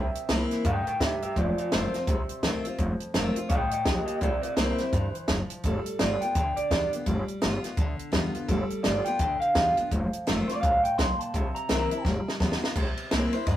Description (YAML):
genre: rockabilly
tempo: 168 BPM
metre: 4/4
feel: swing 61% on 8ths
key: unclear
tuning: A4 = 440 Hz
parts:
  - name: electric guitar through a small old amp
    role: melody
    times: 0.0-13.6 s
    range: F4 to C6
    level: -28 LUFS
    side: right 1 dB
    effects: spring reverb
  - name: picked steel-string acoustic guitar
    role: accompaniment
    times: 0.0-13.6 s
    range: F2 to F4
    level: -32 LUFS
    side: left 2 dB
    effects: none
  - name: upright bass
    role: bass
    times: 0.0-13.6 s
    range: F1 to A2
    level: -30 LUFS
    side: equal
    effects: none
  - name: compact cocktail drum kit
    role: drums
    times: 0.2-13.6 s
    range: crash cymbal, hi-hat, kick drum, ride cymbal, snare drum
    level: -29 LUFS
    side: equal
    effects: none
room: moderate small room reverb, RT60 0.5 s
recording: rough rehearsal-room recording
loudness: -24 LUFS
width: side -12 dB against mid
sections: 0.0-12.8 A section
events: drum fill 12.1-12.8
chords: 0.0 C7; 1.4 F7; 4.2 C7; 5.6 G7; 9.9 F7; 11.3 C7; 12.1 G7; 12.8 C7